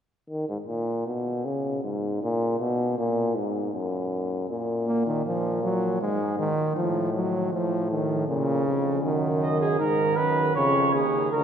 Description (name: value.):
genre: classical, imitative canzona for brass ensemble.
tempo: 79 BPM.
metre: 3/4.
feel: straight.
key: Eb minor.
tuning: A4 = 438 Hz.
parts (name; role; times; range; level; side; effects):
warm euphonium; bass; 0.3-11.4 s; D2 to Eb3; -27 LUFS; left 1 dB; none.
clear trombone; accompaniment; 4.9-11.4 s; Db3 to Bb3; -25 LUFS; right 1 dB; none.
warm flugelhorn; second line; 9.4-11.4 s; Ab4 to Eb5; -23 LUFS; right 2 dB; none.
room: wet cathedral reverb, RT60 4.4 s.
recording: recorded in a church or concert hall.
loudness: -23 LUFS.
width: side -8 dB against mid.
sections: 0.0-11.4 A section.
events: none.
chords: 0.0 Eb5; 1.5 Db5; 2.2 Abmadd9; 3.7 N.C.; 4.5 Bb5; 6.0 Ab5; 6.8 F/A; 8.3 Bbm; 9.0 Ebm/Gb; 10.6 Db/F.